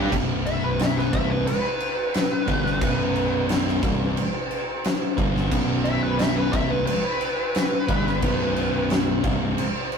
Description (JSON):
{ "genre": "stoner and doom metal", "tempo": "89 BPM", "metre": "4/4", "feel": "straight", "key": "B minor", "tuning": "A4 = 441 Hz", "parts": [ { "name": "thick fuzz guitar", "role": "riff", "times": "0.0-9.6 s", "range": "B1 to G4", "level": "-27 LUFS", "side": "left 4 dB", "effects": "distortion" }, { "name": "thick fuzz guitar", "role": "riff", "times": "0.0-9.6 s", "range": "B1 to G4", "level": "-28 LUFS", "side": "right 6 dB", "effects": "distortion" }, { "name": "growling picked electric bass", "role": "bass", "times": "0.0-9.6 s", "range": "B0 to G1", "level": "-30 LUFS", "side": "equal", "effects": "overdrive" }, { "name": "oversized low-tuned drum kit", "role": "drums", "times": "0.1-10.0 s", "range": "crash cymbal, kick drum, snare drum", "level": "-24 LUFS", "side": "equal", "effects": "none" }, { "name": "fuzz lead guitar", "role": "melody", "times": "0.5-8.9 s", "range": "B4 to E5", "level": "-26 LUFS", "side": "equal", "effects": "wah, distortion" } ], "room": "moderate booth ambience, RT60 0.2 s", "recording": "rough rehearsal-room recording, tube saturation", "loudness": "-20 LUFS", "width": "side -6 dB against mid", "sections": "0.1-10.0 A section", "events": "lead electric guitar solo 0.1-10.0", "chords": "0.1 Bm" }